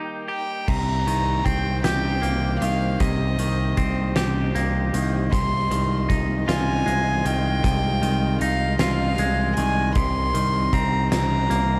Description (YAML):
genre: post-rock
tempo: 52 BPM (dotted quarters)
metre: 6/8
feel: straight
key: C minor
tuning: A4 = 440 Hz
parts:
  - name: muted studio string section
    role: sustained chords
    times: 0.0-11.8 s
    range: G3 to Bb5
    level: -37 LUFS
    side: equal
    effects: none
  - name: clean electric guitar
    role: arpeggios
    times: 0.0-11.8 s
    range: C3 to G4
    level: -30 LUFS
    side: equal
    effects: tape echo
  - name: warm violin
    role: melody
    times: 0.3-11.8 s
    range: Eb5 to C6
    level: -29 LUFS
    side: equal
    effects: none
  - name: modern bright picked electric bass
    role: bass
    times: 0.7-11.8 s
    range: C2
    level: -26 LUFS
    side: equal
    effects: none
  - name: huge arena drum kit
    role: drums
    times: 0.7-11.7 s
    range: crash cymbal, hi-hat, kick drum, snare drum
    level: -29 LUFS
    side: equal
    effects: none
room: light reverb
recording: vinyl crackle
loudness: -22 LUFS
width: mono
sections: 0.7-11.8 A section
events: break 0.0-0.7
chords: 0.0 Eb; 0.7 Cm7; 5.3 Fm7/C; 10.0 Cm7